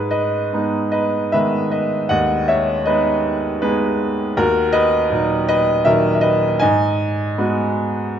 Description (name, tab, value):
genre	classical, lyrical solo piano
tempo	78 BPM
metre	3/4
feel	rubato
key	G# minor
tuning	A4 = 439 Hz
part	clear upright piano	solo	0.0-8.2 s	D#2 to G#5	-16 LUFS	equal	none
room	moderate recital hall reverb, RT60 1.7 s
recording	nothing above 7.9 kHz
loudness	-16 LUFS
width	side -9 dB against mid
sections	0.0-8.2 A section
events	upright piano fill 7.8-8.2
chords	0.0 G#m; 4.4 D#m; 6.6 G#m7